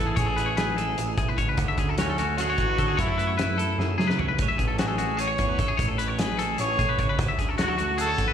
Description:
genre	math rock and midwest emo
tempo	300 BPM (eighths)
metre	7/8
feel	straight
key	A major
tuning	A4 = 440 Hz
part	warm trumpet	melody	0.0-8.3 s	C#4 to C#5	-28 LUFS	equal	slapback echo, analog delay
part	twelve-string electric guitar	accompaniment	0.0-8.3 s	A2 to C#5	-32 LUFS	right 8 dB	slapback echo
part	twangy electric guitar	arpeggios	0.0-8.3 s	F#4 to E5	-29 LUFS	left 8 dB	slapback echo
part	growling picked electric bass	bass	0.0-8.3 s	A1 to F#3	-30 LUFS	equal	overdrive
part	loose indie drum kit	drums	0.2-8.3 s	hi-hat, kick drum, snare drum, toms	-28 LUFS	equal	none
room	little or no reverb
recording	live gig heard through the venue's PA, recital hall reverb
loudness	-22 LUFS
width	side -8 dB against mid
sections	0.0-8.3 A section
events	drum fill 3.8-4.4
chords	0.0 Amaj7; 1.6 Dmaj7; 3.0 F#m9; 4.4 Amaj7; 7.2 Dmaj7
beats	| 0.18 0.38 0.58 0.78 0.98 1.18 1.38 | 1.58 1.78 1.98 2.18 2.38 2.58 2.79 | 2.99 3.19 3.39 3.59 3.79 3.99 4.19 | 4.39 4.59 4.79 4.99 5.19 5.39 5.59 | 5.79 5.99 6.19 6.39 6.59 6.79 6.99 | 7.19 7.39 7.59 7.79 7.99 8.19

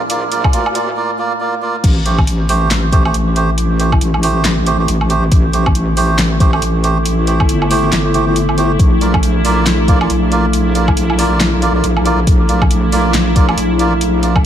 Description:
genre	deep dubstep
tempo	138 BPM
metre	4/4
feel	swing 59% on 16ths, half-time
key	A phrygian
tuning	A4 = 442 Hz
part	deep dark ambient pad	sustained chords	0.0-14.5 s	A3	-23 LUFS	right 3 dB	chorus, built-in reverb
part	melodica	stabs	0.0-14.4 s	A3 to D5	-18 LUFS	right 4 dB	dub echo
part	wobble bass	bass	0.0-14.4 s	G1 to D2	-16 LUFS	left 1 dB	chorus, high-pass filter
part	backwards swelling texture	texture	0.1-14.5 s	E4	-23 LUFS	left 4 dB	built-in reverb
part	deep house drum kit	drums	0.1-14.4 s	crash cymbal, handclaps, hi-hat, snare drum, woodblock	-20 LUFS	equal	none
part	electronic kick drum	drums	0.4-14.4 s	none	-13 LUFS	left 1 dB	none
room	light reverb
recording	none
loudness	-11 LUFS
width	side -10 dB against mid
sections	0.0-1.8 A section; 1.8-14.5 B section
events	build-up 0.0-1.8; break 1.0-1.8; drop 1.8-14.5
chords	0.0 Bb; 1.8 Am7; 8.8 Bb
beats	| 0.10 0.53 0.97 1.40 | 1.84 2.27 2.71 3.14 | 3.58 4.01 4.45 4.88 | 5.32 5.75 6.19 6.62 | 7.05 7.49 7.92 8.36 | 8.79 9.23 9.66 10.10 | 10.53 10.97 11.40 11.84 | 12.27 12.71 13.14 13.58 | 14.01 14.45

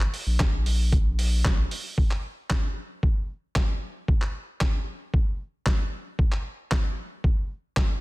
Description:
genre	dance-pop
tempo	114 BPM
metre	4/4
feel	straight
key	unclear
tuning	A4 = 442 Hz
part	saturated sub bass	bass	0.0-1.6 s	Bb1	-24 LUFS	equal	sidechain pumping
part	boom bap sampler-style drum kit	drums	0.0-7.9 s	handclaps, hi-hat, kick drum, snare drum	-24 LUFS	equal	none
room	digital ambience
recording	dense, heavily limited modern master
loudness	-24 LUFS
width	side -22 dB against mid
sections	0.0-2.0 A section; 2.0-8.0 B section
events	none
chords	none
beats	0.40 0.93 1.45 | 1.98 2.50 3.03 3.56 | 4.08 4.61 5.13 5.66 | 6.19 6.71 7.24 7.77

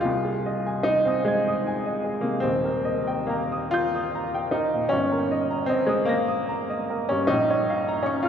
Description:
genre	classical, romantic nocturne for solo piano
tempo	50 BPM (dotted quarters)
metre	6/8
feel	uneven beats, rubato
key	unclear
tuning	A4 = 439 Hz
part	clear upright piano	solo	0.0-8.3 s	Eb1 to Bb6	-22 LUFS	equal	none
room	wet cathedral reverb, RT60 5.4 s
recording	recorded in a church or concert hall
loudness	-22 LUFS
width	side -8 dB against mid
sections	0.0-8.3 A section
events	none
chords	0.1 Ab/C; 2.5 Eb; 4.9 Eb/G; 7.3 Gm7b5/Bb (rootless)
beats	| 0.06 1.28 | 2.46 3.76 | 4.95 6.10 | 7.31

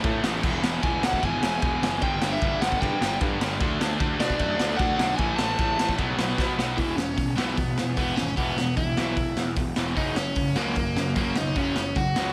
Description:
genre	punk rock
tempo	151 BPM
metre	4/4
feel	straight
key	unclear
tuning	A4 = 444 Hz
part	cranked stack guitar	riff	0.0-12.3 s	E2 to D4	-33 LUFS	equal	overdrive
part	distorted electric guitar	riff	0.0-12.3 s	E2 to D4	-34 LUFS	equal	distortion
part	fuzz picked electric bass	bass	0.0-12.3 s	E1 to B2	-34 LUFS	equal	overdrive
part	raw garage drum kit	drums	0.0-12.3 s	crash cymbal, hi-hat, kick drum, ride cymbal, snare drum	-30 LUFS	equal	none
part	crunchy overdriven guitar	melody	0.8-12.3 s	A#3 to A5	-30 LUFS	equal	none
room	light reverb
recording	none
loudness	-25 LUFS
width	mono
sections	0.0-6.8 A section; 6.8-12.3 B section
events	drum fill 6.4-6.8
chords	0.4 E; 2.0 G5; 3.6 D; 5.2 A5; 6.0 B5; 6.8 E5; 10.0 F#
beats	0.04 | 0.43 0.83 1.23 1.62 | 2.02 2.42 2.81 3.21 | 3.61 4.00 4.40 4.79 | 5.19 5.59 5.98 6.38 | 6.78 7.18 7.57 7.97 | 8.37 8.77 9.17 9.57 | 9.96 10.36 10.76 11.16 | 11.56 11.96

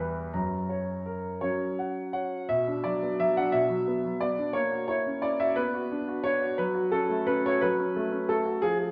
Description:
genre	classical-period piano sonatina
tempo	58 BPM (dotted quarters)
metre	6/8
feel	uneven beats, rubato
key	B minor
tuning	A4 = 440 Hz
part	clear concert grand piano	solo	0.0-8.9 s	E2 to B5	-28 LUFS	equal	none
room	wet recital hall reverb, RT60 1.4 s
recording	worn, warbling old tape, cassette tape, warbly pitch drift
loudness	-28 LUFS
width	mono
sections	0.0-2.5 A section; 2.5-8.9 B section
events	none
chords	0.4 F#; 2.5 Bm; 4.6 F#7/A#; 5.6 Bm; 6.6 F#m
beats	| 0.35 1.43 | 2.50 3.54 | 4.56 5.58 | 6.59 7.62 | 8.62

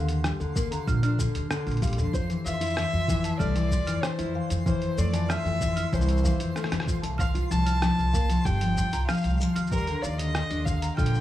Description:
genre	folktronica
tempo	95 BPM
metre	4/4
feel	straight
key	F major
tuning	A4 = 439 Hz
part	marimba with medium mallets	second line	0.0-11.1 s	F5 to F6	-40 LUFS	right 3 dB	tape echo
part	fingerpicked steel-string acoustic guitar	arpeggios	0.0-11.2 s	D3 to G4	-30 LUFS	left 3 dB	tape echo
part	upright bass	bass	0.0-11.2 s	G1 to F2	-27 LUFS	equal	none
part	twinkling granular texture	texture	0.0-11.2 s	C6	-44 LUFS	right 2 dB	built-in reverb
part	lo-fi sampler-style drum kit	drums	0.1-11.2 s	cabasa, hi-hat, rim click	-35 LUFS	equal	none
part	electronic kick drum	drums	0.6-11.1 s	none	-30 LUFS	equal	overdrive
part	dark violin	melody	2.1-11.2 s	Bb4 to A5	-31 LUFS	left 1 dB	tape echo
room	small room ambience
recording	none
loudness	-24 LUFS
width	side -13 dB against mid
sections	0.0-11.2 A section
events	none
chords	0.0 Ebmaj7; 2.1 Fmaj7(no3); 7.2 Csus4; 9.7 Ebmaj7(no3)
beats	0.24 0.87 1.50 | 2.14 2.77 3.40 4.03 | 4.66 5.29 5.93 6.56 | 7.19 7.82 8.45 9.08 | 9.71 10.35 10.98

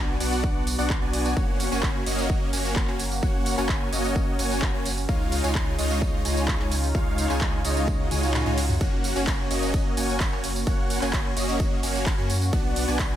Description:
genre	EDM, festival progressive house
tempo	129 BPM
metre	4/4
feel	straight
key	F# major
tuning	A4 = 441 Hz
part	lush unison pad	sustained chords	0.0-13.2 s	C#3 to F#4	-33 LUFS	equal	chorus, sidechain pumping
part	supersaw chords	riff	0.0-13.2 s	G#3 to G#5	-27 LUFS	equal	sidechain pumping, tape echo
part	saturated sub bass	bass	0.0-13.2 s	F#1 to F#2	-29 LUFS	equal	sidechain pumping
part	big-room dance drum kit	drums	0.2-13.1 s	handclaps, hi-hat, ride cymbal, tambourine, toms	-30 LUFS	right 1 dB	overdrive, small room reverb
part	electronic kick drum	drums	0.4-13.1 s	none	-26 LUFS	equal	overdrive, small room reverb
part	swell	sound effects	8.0-8.8 s	none	-38 LUFS	left 1 dB	none
room	digital ambience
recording	none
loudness	-22 LUFS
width	side -11 dB against mid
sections	0.0-13.2 A section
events	swell 8.0-8.8; drum fill 8.1-8.8; kick drops out 8.3-8.8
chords	0.0 Bm; 1.4 F#; 5.1 C#add9; 8.8 F#; 12.5 Bm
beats	0.44 0.90 | 1.37 1.83 2.30 2.76 | 3.23 3.69 4.16 4.62 | 5.09 5.55 6.02 6.48 | 6.95 7.41 7.88 8.34 | 8.81 9.27 9.74 10.20 | 10.67 11.13 11.60 12.06 | 12.53 12.99

